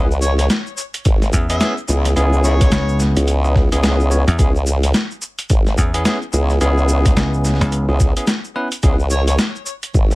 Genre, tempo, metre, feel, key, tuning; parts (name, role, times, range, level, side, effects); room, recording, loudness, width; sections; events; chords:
glitch hop; 108 BPM; 4/4; swing 60% on 16ths; C# minor; A4 = 440 Hz
barky tine electric piano; stabs; 0.0-9.0 s; B3 to C#5; -22 LUFS; equal; sidechain pumping, ping-pong delay
formant-sweep wobble bass; bass; 0.0-10.2 s; G#1 to C#2; -16 LUFS; equal; chorus
boom bap sampler-style drum kit; drums; 0.1-10.2 s; hi-hat, shaker, snare drum; -21 LUFS; equal; overdrive
overdriven harmonica; melody; 0.2-3.0, 9.1-9.3 s; E4 to E5; -26 LUFS; left 2 dB; ping-pong delay
electronic kick drum; drums; 1.1-10.1 s; -15 LUFS; equal; overdrive
dry thumbed slap bass; bass; 1.3-7.9 s; C#2 to E2; -17 LUFS; equal
little or no reverb; vinyl crackle; -14 LUFS; side -21 dB against mid
0.0-10.2 A section
0.0 C#m7